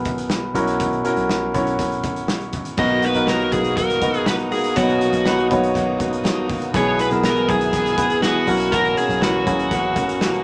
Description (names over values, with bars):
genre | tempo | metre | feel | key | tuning
piano-driven pop | 121 BPM | 4/4 | straight | B major | A4 = 440 Hz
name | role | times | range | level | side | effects
warm grand piano | accompaniment | 0.0-10.4 s | B2 to C#5 | -24 LUFS | equal | none
vintage muted picked electric bass | bass | 0.0-10.4 s | B1 | -32 LUFS | equal | none
loose indie drum kit | drums | 0.1-10.4 s | crash cymbal, hi-hat, kick drum, snare drum | -28 LUFS | equal | none
dark smooth lead guitar | melody | 2.8-10.4 s | F#4 to D#5 | -24 LUFS | equal | overdrive
warm studio string section | sustained chords | 2.8-10.4 s | B3 to E6 | -37 LUFS | equal | none
picked steel-string acoustic guitar | riff | 2.8-10.4 s | B2 to G#4 | -26 LUFS | equal | none
room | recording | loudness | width
moderate studio reverb, RT60 0.6 s | none | -20 LUFS | mono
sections
0.0-2.8 A section; 2.8-10.4 B section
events
none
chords
0.0 E/B; 0.6 F#7/B; 2.8 Bmaj7; 6.7 E/B; 8.5 F#7/B